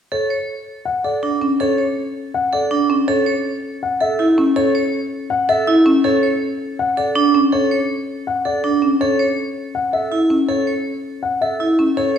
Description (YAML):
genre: classical, minimalist pattern music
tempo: 162 BPM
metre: 4/4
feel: straight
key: unclear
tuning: A4 = 435 Hz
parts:
  - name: warm grand piano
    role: melody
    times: 0.1-12.2 s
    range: C#5 to F#5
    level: -20 LUFS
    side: left 3 dB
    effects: none
  - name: vibraphone with medium hard mallets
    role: arpeggios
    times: 0.1-12.2 s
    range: D4 to C#5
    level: -18 LUFS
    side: right 4 dB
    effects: none
  - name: marimba with medium mallets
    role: accompaniment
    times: 1.4-12.0 s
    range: C#4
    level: -22 LUFS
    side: left 3 dB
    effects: none
room: wet scoring stage reverb, RT60 1.6 s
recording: heard from further back in the room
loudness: -16 LUFS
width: side -8 dB against mid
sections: 0.1-12.2 A section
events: none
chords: 0.1 Dmaj7(no3); 3.1 F#m7 (rootless); 6.0 Dmaj7(no3); 9.0 F#m7 (rootless)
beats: | 0.12 0.49 0.86 1.23 | 1.60 1.97 2.34 2.71 | 3.08 3.45 3.82 4.19 | 4.56 4.93 5.30 5.67 | 6.04 6.42 6.79 7.16 | 7.53 7.90 8.27 8.64 | 9.01 9.38 9.75 10.12 | 10.49 10.86 11.23 11.60 | 11.97